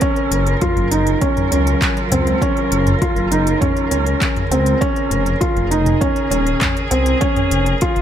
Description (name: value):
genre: piano and strings electronica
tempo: 100 BPM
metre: 4/4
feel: straight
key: unclear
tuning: A4 = 440 Hz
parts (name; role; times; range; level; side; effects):
- muted string quartet; sustained chords; 0.0-8.0 s; Db3 to Bb4; -23 LUFS; right 2 dB; sidechain pumping
- felt-muted upright piano; riff; 0.0-8.0 s; C4 to F4; -18 LUFS; right 1 dB; digital delay
- electronic kick drum; drums; 0.0-7.9 s; none; -21 LUFS; equal; overdrive
- organic electronic drum kit; drums; 0.0-8.0 s; handclaps, hi-hat, toms; -23 LUFS; left 1 dB; none
- dark detuned saw bass; bass; 0.3-8.0 s; Eb1 to Db2; -19 LUFS; equal; tube saturation, sidechain pumping
room: light reverb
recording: none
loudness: -14 LUFS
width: side -10 dB against mid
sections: 0.0-8.0 A section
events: none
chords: 0.0 Gbmaj7; 4.8 Bbm7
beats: | 0.01 0.61 1.22 1.81 | 2.42 3.02 3.62 4.21 | 4.82 5.42 6.01 6.62 | 7.21 7.82